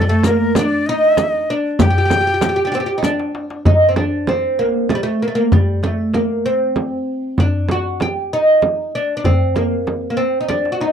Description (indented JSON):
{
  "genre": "Arabic maqam ensemble",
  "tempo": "97 BPM",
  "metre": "3/4",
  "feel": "straight",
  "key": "G maqam nahawand",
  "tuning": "A4 = 440 Hz",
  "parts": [
    { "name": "oud", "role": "melody", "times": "0.0-10.9 s", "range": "G3 to G4", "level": "-16 LUFS", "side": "right 1 dB", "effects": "none" },
    { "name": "breathy bright jazz flute", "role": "second line", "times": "0.0-3.0 s", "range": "A4 to G5", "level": "-21 LUFS", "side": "left 5 dB", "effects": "none" },
    { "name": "darbuka", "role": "percussion", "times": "0.2-10.9 s", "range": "none", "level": "-19 LUFS", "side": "left 1 dB", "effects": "none" },
    { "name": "frame drum", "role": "percussion", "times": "0.2-10.6 s", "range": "none", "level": "-20 LUFS", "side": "right 3 dB", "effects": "none" },
    { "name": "riq", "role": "percussion", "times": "0.2-3.2 s", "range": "none", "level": "-23 LUFS", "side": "left 9 dB", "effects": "none" }
  ],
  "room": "light reverb",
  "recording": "dry, close 1970s-style studio recording",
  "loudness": "-14 LUFS",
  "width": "side -8 dB against mid",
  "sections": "0.0-3.7 A section; 3.7-10.9 B section",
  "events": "drum fill 3.0-3.7, 10.5-10.9",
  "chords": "none"
}